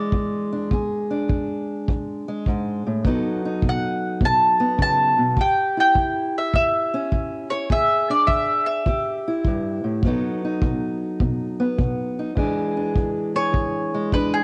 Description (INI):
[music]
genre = acoustic country blues, solo or duo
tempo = 103 BPM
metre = 4/4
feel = swing 67% on 8ths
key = E mixolydian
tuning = A4 = 440 Hz
[part]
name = mandolin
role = melody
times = 0.0-9.4, 13.4-14.4 s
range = G#4 to A5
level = -22 LUFS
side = equal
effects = cassette tape
[part]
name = fingerpicked acoustic archtop guitar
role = accompaniment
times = 0.0-14.4 s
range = E2 to A4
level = -26 LUFS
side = equal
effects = none
[part]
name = kick drum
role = drums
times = 0.1-14.3 s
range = none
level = -26 LUFS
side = equal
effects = cassette tape
[sound]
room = light reverb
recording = home recording on cassette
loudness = -22 LUFS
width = mono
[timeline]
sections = 0.0-12.4 A section; 12.4-14.4 B section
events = mandolin solo 12.4-14.4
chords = 0.0 E7; 3.0 B7; 5.4 A7; 7.7 E7; 8.9 A5; 10.0 B7; 12.4 E7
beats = 0.12 | 0.70 1.28 1.87 2.45 | 3.03 3.62 4.20 4.78 | 5.37 5.95 6.53 7.12 | 7.70 8.28 8.87 9.45 | 10.03 10.62 11.20 11.79 | 12.37 12.96 13.54 14.13